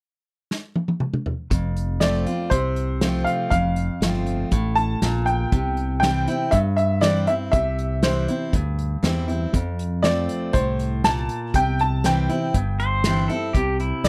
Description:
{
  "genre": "honky-tonk and classic country",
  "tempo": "120 BPM",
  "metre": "4/4",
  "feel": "straight",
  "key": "F major",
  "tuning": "A4 = 440 Hz",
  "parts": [
    { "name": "unplugged drum kit", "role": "drums", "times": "0.5-14.1 s", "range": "hi-hat, kick drum, snare drum, toms", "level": "-26 LUFS", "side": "equal", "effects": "none" },
    { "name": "picked steel-string acoustic guitar", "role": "accompaniment", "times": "1.5-14.1 s", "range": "F2 to F4", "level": "-28 LUFS", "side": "equal", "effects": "none" },
    { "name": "fingered electric bass", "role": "bass", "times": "1.5-14.1 s", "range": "F1 to G2", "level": "-27 LUFS", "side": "equal", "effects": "none" },
    { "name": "bright upright piano", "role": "melody", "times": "2.0-14.1 s", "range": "C5 to A5", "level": "-26 LUFS", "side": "equal", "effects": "none" },
    { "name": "pedal steel guitar", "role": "second line", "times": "12.8-14.0 s", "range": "E4 to C5", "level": "-28 LUFS", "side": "equal", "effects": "none" }
  ],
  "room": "light reverb",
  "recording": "dry, close 1970s-style studio recording",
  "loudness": "-22 LUFS",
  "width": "mono",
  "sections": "0.0-1.5 A section; 1.5-14.1 B section",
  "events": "drum fill 0.5-1.5",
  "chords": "0.0 N.C.; 1.5 F; 5.5 C; 9.5 F; 11.5 C",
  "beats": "0.01 0.51 1.01 | 1.51 2.01 2.51 3.02 | 3.52 4.02 4.52 5.02 | 5.52 6.03 6.53 7.03 | 7.53 8.03 8.54 9.04 | 9.54 10.04 10.54 11.04 | 11.54 12.04 12.55 13.05 | 13.55 14.05"
}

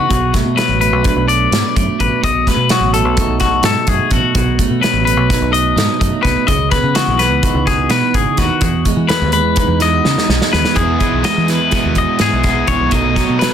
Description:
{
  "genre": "math rock and midwest emo",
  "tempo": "253 BPM (eighths)",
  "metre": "9/8",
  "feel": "straight",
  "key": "E major",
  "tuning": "A4 = 440 Hz",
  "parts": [
    { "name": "clean electric guitar", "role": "accompaniment", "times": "0.0-13.5 s", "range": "E2 to A4", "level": "-19 LUFS", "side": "right 10 dB", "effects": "lush chorus" },
    { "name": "twangy electric guitar", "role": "arpeggios", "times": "0.0-13.5 s", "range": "F#4 to D#5", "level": "-16 LUFS", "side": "left 7 dB", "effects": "warbly pitch drift, analog delay" },
    { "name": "fingered electric bass", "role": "bass", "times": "0.1-13.5 s", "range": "G#1 to E3", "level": "-18 LUFS", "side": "equal", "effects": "none" },
    { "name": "loose indie drum kit", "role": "drums", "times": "0.1-13.5 s", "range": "hi-hat, kick drum, snare drum", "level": "-18 LUFS", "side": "equal", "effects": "none" },
    { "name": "overdriven electric guitar", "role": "riff", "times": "10.8-13.5 s", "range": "B2 to E4", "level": "-20 LUFS", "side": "right 2 dB", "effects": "none" }
  ],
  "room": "light reverb",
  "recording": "dense, heavily limited modern master",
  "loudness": "-12 LUFS",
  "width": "side -9 dB against mid",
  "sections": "0.0-10.8 A section; 10.8-13.5 B section",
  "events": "drum fill 10.1-10.8",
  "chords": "0.1 Bm7; 2.2 B7; 6.5 C#m11; 8.6 Emaj9; 10.8 Emaj7; 12.9 B7",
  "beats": "| 0.10 0.34 0.58 0.81 1.05 1.28 1.52 1.76 1.99 | 2.23 2.47 2.70 2.94 3.18 3.41 3.65 3.89 4.12 | 4.36 4.60 4.83 5.07 5.31 5.55 5.78 6.02 6.26 | 6.49 6.73 6.97 7.21 7.44 7.68 7.92 8.15 8.39 | 8.63 8.87 9.10 9.34 9.58 9.81 10.05 10.29 10.53 | 10.77 11.01 11.24 11.48 11.72 11.96 12.20 12.44 12.68 | 12.91 13.15 13.39"
}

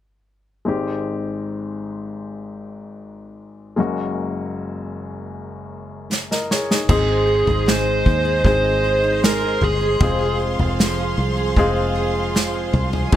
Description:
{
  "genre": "pop ballad",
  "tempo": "77 BPM",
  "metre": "4/4",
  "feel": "straight",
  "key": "Ab major",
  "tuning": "A4 = 440 Hz",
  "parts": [
    { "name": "clear baby grand piano", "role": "accompaniment", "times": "0.7-13.2 s", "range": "Gb1 to Eb5", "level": "-24 LUFS", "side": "left 3 dB", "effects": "none" },
    { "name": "unplugged drum kit", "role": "drums", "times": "6.1-13.2 s", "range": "crash cymbal, kick drum, snare drum, toms", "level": "-19 LUFS", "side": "equal", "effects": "none" },
    { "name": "lead guitar through a small cranked amp", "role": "melody", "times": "6.9-10.4 s", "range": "Ab4 to C5", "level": "-20 LUFS", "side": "right 1 dB", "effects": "overdrive" },
    { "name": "warm chamber string section", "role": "sustained chords", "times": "6.9-13.2 s", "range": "Ab4 to C6", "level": "-27 LUFS", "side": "equal", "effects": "none" },
    { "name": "picked steel-string acoustic guitar", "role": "arpeggios", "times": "6.9-13.2 s", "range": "F2 to Ab4", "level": "-27 LUFS", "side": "right 4 dB", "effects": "digital delay" },
    { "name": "fingered electric bass", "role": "bass", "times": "6.9-13.2 s", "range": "F1 to Eb2", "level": "-23 LUFS", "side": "equal", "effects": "none" }
  ],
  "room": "light reverb",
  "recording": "faint mains hum",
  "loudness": "-17 LUFS",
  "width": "side -12 dB against mid",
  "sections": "0.7-6.9 A section; 6.9-13.2 B section",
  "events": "drum fill 6.1-6.9",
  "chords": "0.7 Abmaj7; 3.8 Gbadd9; 6.9 Ab; 10.0 Fm",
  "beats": "| 0.66 1.44 2.22 3.00 | 3.78 4.55 5.33 6.11 | 6.89 7.67 8.45 9.23 | 10.01 10.79 11.57 12.35 | 13.13"
}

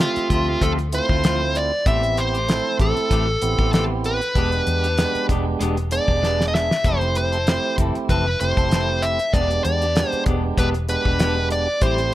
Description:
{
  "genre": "straight-eighth soul blues",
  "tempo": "96 BPM",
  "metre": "4/4",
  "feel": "swing 54% on 16ths",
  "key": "unclear",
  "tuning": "A4 = 440 Hz",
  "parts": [
    { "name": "dark smooth lead guitar", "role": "melody", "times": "0.0-12.1 s", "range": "F4 to E5", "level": "-22 LUFS", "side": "equal", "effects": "overdrive" },
    { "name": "tonewheel organ", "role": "accompaniment", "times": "0.0-12.1 s", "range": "G#3 to E5", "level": "-26 LUFS", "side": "right 6 dB", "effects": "overdrive, stopped rotary speaker" },
    { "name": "clean electric guitar", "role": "stabs", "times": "0.0-12.1 s", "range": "E3 to A4", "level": "-30 LUFS", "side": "left 5 dB", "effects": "none" },
    { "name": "vintage muted fingered electric bass", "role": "bass", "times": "0.0-12.1 s", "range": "E1 to E2", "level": "-24 LUFS", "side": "equal", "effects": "none" },
    { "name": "cloth-damped thuddy drum kit", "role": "drums", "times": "0.0-12.1 s", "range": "hi-hat, kick drum, snare drum", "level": "-22 LUFS", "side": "equal", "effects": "none" }
  ],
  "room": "light reverb, studio ambience",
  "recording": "none",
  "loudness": "-18 LUFS",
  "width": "side -14 dB against mid",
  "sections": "0.0-12.1 A section",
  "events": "drum fill 6.2-6.8",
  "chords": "0.0 Dm7; 1.9 Am7; 4.4 E7#9; 6.8 Fmaj7; 9.3 E7#9",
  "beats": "0.62 1.24 | 1.86 2.48 3.11 3.73 | 4.35 4.98 5.60 6.22 | 6.84 7.47 8.09 8.71 | 9.33 9.96 10.58 11.20 | 11.82"
}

